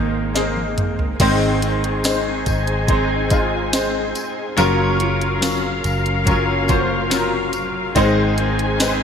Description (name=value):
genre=pop ballad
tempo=71 BPM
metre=4/4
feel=straight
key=unclear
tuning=A4 = 441 Hz
part: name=clear concert grand piano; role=accompaniment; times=0.0-9.0 s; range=Ab2 to C5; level=-20 LUFS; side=left 2 dB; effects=ensemble chorus
part: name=muted studio string section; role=sustained chords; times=0.0-9.0 s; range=Gb3 to Ab5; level=-25 LUFS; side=left 1 dB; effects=none
part: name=fingerpicked steel-string acoustic guitar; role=arpeggios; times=0.0-9.0 s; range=Gb3 to Db5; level=-26 LUFS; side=right 5 dB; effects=lush chorus, ping-pong delay
part: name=vintage muted fingered electric bass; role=bass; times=0.0-9.0 s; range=Gb1 to Ab1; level=-24 LUFS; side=equal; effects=none
part: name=smooth R&B drum kit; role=drums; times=0.4-9.0 s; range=crash cymbal, hi-hat, kick drum, snare drum, toms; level=-22 LUFS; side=equal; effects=gated reverb
part: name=tambourine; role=percussion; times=1.2-9.0 s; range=none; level=-34 LUFS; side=left 6 dB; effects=none
room=moderate plate reverb, RT60 2.7 s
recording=bright 1980s-style digital production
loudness=-16 LUFS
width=side -7 dB against mid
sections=0.0-1.2 A section; 1.2-9.0 B section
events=drum fill 0.4-1.2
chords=0.0 Abadd9; 1.2 Ab; 4.6 Gbmaj7; 8.0 Ab